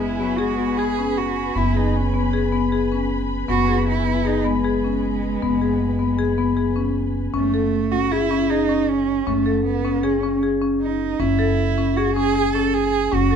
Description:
contemporary instrumental, chamber music in an uneven meter; 155 BPM; 5/4; straight; F# dorian; A4 = 440 Hz
warm cello; melody; 0.0-13.4 s; G#3 to A4; -24 LUFS; right 8 dB
warm viola; second line; 0.0-1.2 s; F#3 to G#3; -31 LUFS; right 3 dB
muted symphonic string section; sustained chords; 0.0-7.3 s; B4 to B5; -31 LUFS; left 3 dB
marimba with medium hard mallets; arpeggios; 0.0-13.4 s; B3 to A4; -21 LUFS; left 4 dB
upright bass; bass; 0.0-13.4 s; F#1; -25 LUFS; right 2 dB
moderate recital hall reverb, RT60 1.4 s; dark, warm production; -18 LUFS; side -7 dB against mid
0.0-7.3 A section; 7.3-13.4 B section
0.0 E/F# (rootless); 7.3 F#5

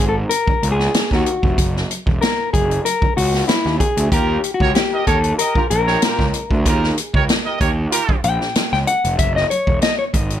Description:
funk; 94 BPM; 4/4; straight; Eb mixolydian; A4 = 439 Hz
mellow electric guitar; accompaniment; 0.0-10.4 s; Fb4 to G5; -20 LUFS; left 4 dB
fuzz picked electric bass; bass; 0.0-10.4 s; Fb1 to Eb2; -21 LUFS; right 1 dB; overdrive
swinging big-band drum kit; drums; 0.3-10.4 s; hi-hat, kick drum, snare drum; -19 LUFS; equal
warm horn section; second line; 4.1-8.2 s; F4 to Eb5; -21 LUFS; right 6 dB
light reverb; -15 LUFS; side -10 dB against mid
0.0-10.4 A section
clean electric guitar solo 0.0-10.4
0.0 Gbsus2; 4.1 Ebadd9; 9.2 Gbsus2

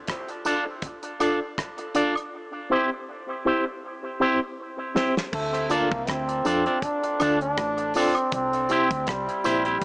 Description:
dub reggae; 80 BPM; 4/4; swing 55% on 16ths; D minor; A4 = 440 Hz
damped 70s drum kit; drums; 0.1-9.8 s; crash cymbal, hi-hat, kick drum, rim click, snare drum; -31 LUFS; equal
electric guitar with an envelope filter; accompaniment; 0.5-9.8 s; C4 to D5; -27 LUFS; right 1 dB; dub echo
reed electric piano; stabs; 0.5-9.6 s; C4 to E5; -29 LUFS; left 1 dB; fast tremolo, dub echo
tambourine and woodblock; percussion; 0.5-9.6 s; -36 LUFS; right 1 dB; dub echo
brilliant trombone; melody; 5.3-9.8 s; G3 to D4; -25 LUFS; equal; dub echo
deep dub fingered electric bass; bass; 5.3-9.8 s; A1 to F2; -35 LUFS; equal
moderate plate reverb, RT60 3.5 s; echo-heavy mix, small speaker sound; -22 LUFS; side -25 dB against mid
0.0-5.3 A section; 5.3-9.8 B section
drum fill 3.8-5.3
0.0 Dm; 2.3 C; 5.3 Dm; 8.3 C

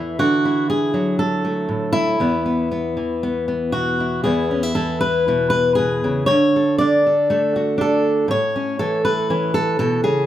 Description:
folk, solo fingerstyle acoustic guitar; 119 BPM; 4/4; straight; E mixolydian; A4 = 440 Hz
fingerpicked steel-string acoustic guitar; solo; 0.0-10.3 s; E2 to E5; -17 LUFS; equal
moderate large studio reverb, RT60 0.9 s; band playing live in one room; -17 LUFS; side -12 dB against mid
0.0-4.3 A section; 4.3-10.3 A section
0.2 Dadd9; 2.2 E5; 4.3 E; 6.3 D; 8.3 A

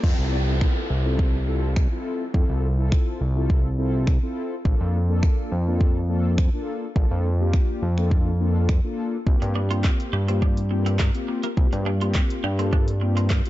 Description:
dance-pop; 104 BPM; 4/4; straight; F major; A4 = 439 Hz
mellow synth brass; accompaniment; 0.0-13.5 s; Bb3 to A4; -29 LUFS; left 2 dB; chorus, sidechain pumping
fat analog bass; bass; 0.0-13.4 s; Bb1 to G2; -22 LUFS; equal; sidechain pumping
deep house drum kit; drums; 0.0-13.5 s; crash cymbal, finger snaps, handclaps, hi-hat, kick drum, snare drum; -21 LUFS; equal
downlifter; sound effects; 0.0-4.7 s; -34 LUFS; right 1 dB
twelve-string electric guitar; riff; 9.4-13.4 s; Bb3 to G4; -34 LUFS; right 6 dB; wide subtle chorus
digital ambience; dark, warm production, nothing above 7.8 kHz; -20 LUFS; side -16 dB against mid
0.0-13.5 A section
0.0 Fmaj7; 4.7 Bbmaj7; 9.3 C7sus4

